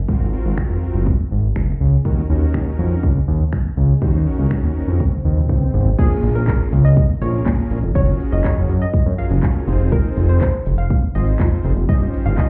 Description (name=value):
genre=dance-pop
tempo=122 BPM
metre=4/4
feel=straight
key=Bb minor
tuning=A4 = 439 Hz
part: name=big bright polysynth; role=accompaniment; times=0.1-12.5 s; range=Bb3 to C5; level=-30 LUFS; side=equal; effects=none
part: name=fat analog bass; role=bass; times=0.1-12.3 s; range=F1 to Bb2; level=-19 LUFS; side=equal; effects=sidechain pumping
part: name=house drum kit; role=drums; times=0.1-12.5 s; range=crash cymbal, finger snaps, handclaps, hi-hat, kick drum, shaker, toms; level=-20 LUFS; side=equal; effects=none
part: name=swell and impact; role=sound effects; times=4.6-8.0 s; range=none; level=-34 LUFS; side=equal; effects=none
part: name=analog pluck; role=melody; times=6.0-12.5 s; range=Ab4 to F5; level=-30 LUFS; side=equal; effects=chorus, delay
room=little or no reverb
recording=heard muffled through a wall, club reverb, EQ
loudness=-18 LUFS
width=mono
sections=0.0-6.0 A section; 6.0-12.5 B section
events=swell 4.6-6.0; drum fill 5.0-6.0; drop 6.0-12.5; impact 6.0-8.0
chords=0.0 Ab13; 2.1 Ebm7; 6.0 Bbm7; 8.0 Gbmaj9; 9.7 Fm7; 11.9 Eb13/G